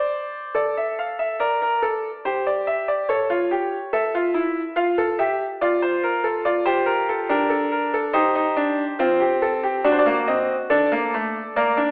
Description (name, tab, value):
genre	classical, baroque-style 4-part fugue for grand piano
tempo	71 BPM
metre	4/4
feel	straight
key	unclear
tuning	A4 = 440 Hz
part	bright grand piano	solo	0.0-11.9 s	A3 to F5	-22 LUFS	equal	none
room	wet recital hall reverb, RT60 1.7 s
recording	telephone sound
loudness	-22 LUFS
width	mono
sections	0.0-11.9 A section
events	none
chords	0.0 Dm; 1.4 Gm; 3.1 A7; 4.8 Dm/F; 6.5 Gm; 8.1 Cm; 9.8 D7